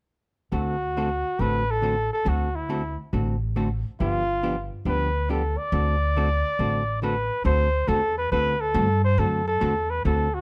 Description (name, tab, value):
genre	country, western swing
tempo	139 BPM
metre	4/4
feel	swing 67% on 8ths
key	D mixolydian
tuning	A4 = 437 Hz
part	warm flugelhorn	melody	0.5-10.4 s	E4 to D5	-28 LUFS	equal	none
part	hollow-body jazz guitar	accompaniment	0.5-10.3 s	D3 to A4	-31 LUFS	equal	none
part	upright bass	bass	0.5-10.4 s	G1 to G2	-28 LUFS	equal	none
room	light reverb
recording	none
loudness	-24 LUFS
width	mono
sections	0.5-7.5 A section; 7.5-10.4 B section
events	none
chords	0.5 D7; 4.0 G7; 5.7 D7; 7.5 D9